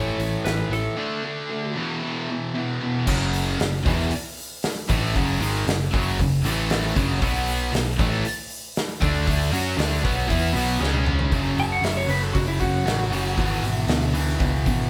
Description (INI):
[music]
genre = hard rock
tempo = 117 BPM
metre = 4/4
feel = straight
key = F# minor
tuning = A4 = 438 Hz
[part]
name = lightly driven lead guitar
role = melody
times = 0.0-1.7, 11.6-14.1 s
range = E4 to A5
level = -30 LUFS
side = equal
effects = none
[part]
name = crunchy overdriven guitar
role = riff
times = 0.0-14.9 s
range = E2 to F#4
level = -33 LUFS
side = equal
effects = none
[part]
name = heavy high-gain guitar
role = riff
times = 0.0-14.9 s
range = E2 to F#4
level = -32 LUFS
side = equal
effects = distortion
[part]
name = sludgy distorted guitar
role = riff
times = 0.0-14.9 s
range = E2 to F#4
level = -30 LUFS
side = equal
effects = overdrive
[part]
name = picked electric bass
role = bass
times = 0.0-14.9 s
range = E1 to F#2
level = -28 LUFS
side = equal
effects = none
[part]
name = big rock drum kit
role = drums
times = 0.2-14.8 s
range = crash cymbal, hi-hat, kick drum, snare drum, toms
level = -29 LUFS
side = equal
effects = none
[sound]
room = moderate stone room reverb, RT60 1.1 s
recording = band playing live in one room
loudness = -23 LUFS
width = mono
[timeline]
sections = 0.0-3.1 A section; 3.1-11.3 B section; 11.3-14.9 C section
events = break 1.0-3.1; drum fill 10.8-11.3; lead electric guitar solo 11.3-14.9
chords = 0.0 A; 1.0 D5; 1.8 E5; 3.1 F#m; 6.4 A5; 7.0 F#5; 7.2 B5; 10.8 C#5; 11.3 F#5; 13.4 E/G#